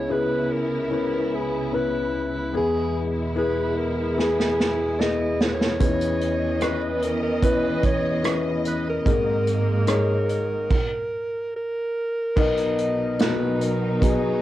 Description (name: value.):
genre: pop ballad.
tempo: 73 BPM.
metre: 4/4.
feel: straight.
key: unclear.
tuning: A4 = 437 Hz.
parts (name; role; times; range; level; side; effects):
breathy alto saxophone; melody; 0.0-14.4 s; G#4 to D#5; -27 LUFS; right 2 dB; cassette tape.
felt-muted upright piano; accompaniment; 0.0-14.4 s; G#1 to C#5; -25 LUFS; left 4 dB; cassette tape.
muted studio string section; sustained chords; 0.0-14.4 s; C#2 to D#5; -27 LUFS; right 2 dB; cassette tape.
unplugged drum kit; drums; 4.2-14.2 s; crash cymbal, hi-hat, kick drum, rim click, snare drum; -24 LUFS; right 2 dB; cassette tape.
room: wet booth ambience, RT60 0.2 s.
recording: home recording on cassette.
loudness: -21 LUFS.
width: side -14 dB against mid.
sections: 0.0-12.4 A section; 12.4-14.4 B section.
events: drum fill 4.2-5.8; stop 10.7-12.4.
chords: 0.0 C#m7; 2.6 E; 5.8 C#m7/E; 9.1 G#sus2; 12.4 Bmaj7.